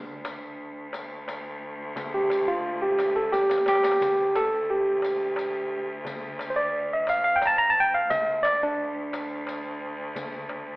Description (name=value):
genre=Arabic maqam ensemble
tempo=88 BPM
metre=3/4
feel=straight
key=D maqam bayati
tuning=A4 = 440 Hz
part: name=barky tine electric piano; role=melody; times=0.0-10.3 s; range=D4 to Bb5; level=-23 LUFS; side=equal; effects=none
part: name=rich cello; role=drone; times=0.0-10.8 s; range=D2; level=-35 LUFS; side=equal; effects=none
part: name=darbuka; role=percussion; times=0.2-10.7 s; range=none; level=-40 LUFS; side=left 1 dB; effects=none
part: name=riq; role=percussion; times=0.3-10.3 s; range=none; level=-40 LUFS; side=left 2 dB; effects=none
room=wet recital hall reverb, RT60 1.4 s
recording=telephone sound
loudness=-23 LUFS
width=side -23 dB against mid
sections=0.0-10.8 A section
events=drum fill 3.3-4.0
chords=none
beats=0.59 1.27 | 1.96 2.64 3.32 | 4.01 4.69 5.38 | 6.06 6.74 7.43 | 8.11 8.79 9.48 | 10.16